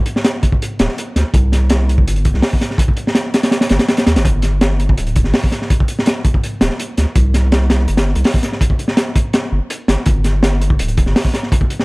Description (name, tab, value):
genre	drum and bass, jungle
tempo	165 BPM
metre	4/4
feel	straight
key	unclear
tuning	A4 = 440 Hz
part	crunchy breakbeat drum kit	drums	0.1-11.8 s	hi-hat, kick drum, snare drum	-14 LUFS	equal	none
part	saturated sub bass	bass	0.8-11.1 s	D1 to Eb2	-15 LUFS	equal	none
room	little or no reverb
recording	vinyl crackle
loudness	-13 LUFS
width	side -27 dB against mid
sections	0.0-11.8 A section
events	none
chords	none